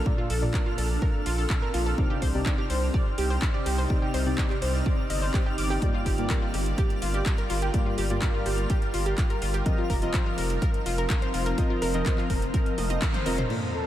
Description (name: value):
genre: progressive house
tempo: 125 BPM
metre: 4/4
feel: straight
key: unclear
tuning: A4 = 439 Hz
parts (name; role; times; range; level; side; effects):
- shimmering ambient pad; sustained chords; 0.0-13.9 s; C3 to D5; -34 LUFS; equal; chorus, built-in reverb, sidechain pumping
- deep mellow chord stab; stabs; 0.0-13.8 s; G2 to Eb5; -33 LUFS; left 1 dB; chorus, sidechain pumping, diffuse ambient delay
- twinkling granular texture; texture; 0.0-13.9 s; C6 to F6; -42 LUFS; right 1 dB; built-in reverb, ensemble chorus, sidechain pumping
- electronic kick drum; drums; 0.1-13.1 s; none; -26 LUFS; equal; none
- analog pluck; arpeggios; 0.2-13.5 s; F4 to D6; -32 LUFS; equal; chorus, sidechain pumping, diffuse ambient delay
- saturated sub bass; bass; 0.3-13.5 s; F1 to C2; -28 LUFS; equal; tube saturation, sidechain pumping
- deep house drum kit; drums; 0.3-13.6 s; crash cymbal, handclaps, hi-hat, rim click, toms; -35 LUFS; equal; overdrive, sidechain pumping on hats, sidechain pumping on toms, sidechain pumping on cymbals
- sub drop; sound effects; 13.5-13.9 s; none; -34 LUFS; equal; none
- expressive synth lead; melody; 13.7-13.9 s; A4; -30 LUFS; left 2 dB; wide subtle chorus
room: moderate cathedral reverb, RT60 5.8 s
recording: dreamy mix soaked in reverb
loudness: -24 LUFS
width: side -12 dB against mid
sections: 0.0-13.5 A section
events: drum fill 12.8-13.5; band accent 13.0; impact 13.5-13.9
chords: 0.0 Bbmaj7; 2.0 Cmadd9; 5.8 Gm7; 9.7 F7sus4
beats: | 0.06 0.54 1.02 1.50 | 1.98 2.46 2.94 3.42 | 3.90 4.38 4.86 5.34 | 5.82 6.30 6.78 7.26 | 7.74 8.22 8.70 9.18 | 9.66 10.14 10.62 11.10 | 11.58 12.06 12.54 13.02 | 13.50